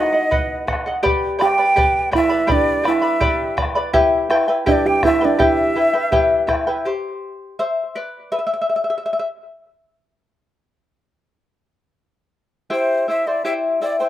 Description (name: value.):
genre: andean folk, Andean ensemble.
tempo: 82 BPM.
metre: 2/4.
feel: straight.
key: unclear.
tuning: A4 = 441 Hz.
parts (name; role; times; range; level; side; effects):
breathy quena; melody; 0.0-6.5, 12.7-14.1 s; C5 to G5; -19 LUFS; right 1 dB; slapback echo.
steel pan; second line; 0.0-6.5 s; D4 to G4; -21 LUFS; right 4 dB; slapback echo.
charango; accompaniment; 0.0-9.3, 12.7-14.1 s; E4 to B5; -19 LUFS; left 2 dB; slapback echo.
bombo; percussion; 0.3-6.7 s; none; -24 LUFS; equal; none.
room: little or no reverb.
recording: recorded outdoors, with no room sound.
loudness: -16 LUFS.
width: side -12 dB against mid.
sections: 0.0-6.9 A section; 6.9-12.7 B section; 12.7-14.1 C section.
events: charango solo 6.9-12.7.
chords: 0.0 B; 1.0 G; 3.9 Em; 6.9 C5; 8.3 N.C.; 12.7 C.